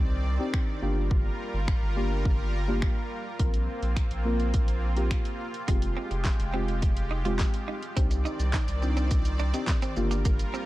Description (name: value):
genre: dance-pop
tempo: 105 BPM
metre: 4/4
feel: straight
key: F dorian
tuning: A4 = 440 Hz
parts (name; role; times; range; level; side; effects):
- deep mellow chord stab; accompaniment; 0.0-10.7 s; Ab3 to Bb4; -34 LUFS; left 1 dB; chorus, sidechain pumping
- supersaw pad; sustained chords; 0.0-10.7 s; Eb3 to D5; -36 LUFS; right 1 dB; sidechain pumping
- saturated sub bass; bass; 0.0-10.4 s; F1 to C2; -28 LUFS; equal; sidechain pumping
- pop drum kit; drums; 0.5-10.7 s; finger snaps, handclaps, hi-hat, kick drum, shaker, snare drum; -27 LUFS; equal; none
- direct-recorded clean electric guitar; riff; 5.7-10.7 s; Ab3 to F4; -38 LUFS; right 6 dB; lush chorus
room: little or no reverb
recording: dark, warm production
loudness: -25 LUFS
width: side -17 dB against mid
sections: 0.0-10.7 A section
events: none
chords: 0.0 Cmadd9; 0.8 Gm7; 3.4 Bbsus2; 5.7 Fmadd9; 8.0 Cmadd9; 10.0 Gm7